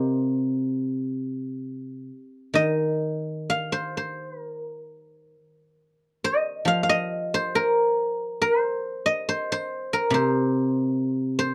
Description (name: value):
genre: chinese traditional, Chinese solo plucked strings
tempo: 63-73 BPM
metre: 4/4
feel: rubato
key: C yu mode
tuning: A4 = 441 Hz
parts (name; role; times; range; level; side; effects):
- guzheng; solo; 0.0-11.5 s; C3 to C6; -25 LUFS; equal; none
room: little or no reverb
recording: dry, close 1970s-style studio recording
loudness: -25 LUFS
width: mono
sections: 0.0-11.5 A section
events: none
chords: none